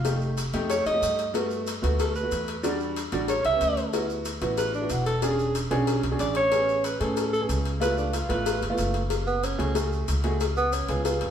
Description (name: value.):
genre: Afro-Cuban jazz.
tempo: 186 BPM.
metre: 4/4.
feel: straight.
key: unclear.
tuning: A4 = 439 Hz.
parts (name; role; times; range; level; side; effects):
breathy alto saxophone; melody; 0.0-8.6 s; D4 to E5; -26 LUFS; right 1 dB; none.
upright bass; bass; 0.0-11.3 s; E1 to A2; -29 LUFS; equal; none.
cowbell; percussion; 0.0-11.3 s; none; -32 LUFS; left 7 dB; none.
warm upright piano; accompaniment; 0.1-11.3 s; G3 to G#4; -29 LUFS; right 2 dB; none.
maracas; percussion; 0.1-11.3 s; none; -39 LUFS; right 2 dB; none.
mellow tenor saxophone; second line; 9.3-11.1 s; B3 to C#4; -28 LUFS; right 2 dB; none.
room: wet stone room reverb, RT60 1.2 s.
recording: band playing live in one room.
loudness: -23 LUFS.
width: side -9 dB against mid.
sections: 0.0-9.1 A section; 9.1-11.3 A section.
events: alto saxophone solo 0.0-9.1; tenor saxophone solo 9.1-11.3.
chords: 0.1 F9; 1.3 Gmaj7; 2.6 Em7; 3.3 A9; 3.9 D6; 5.2 E13; 6.5 Amaj9; 7.8 C#aug7; 9.1 F#madd9; 10.4 C#7.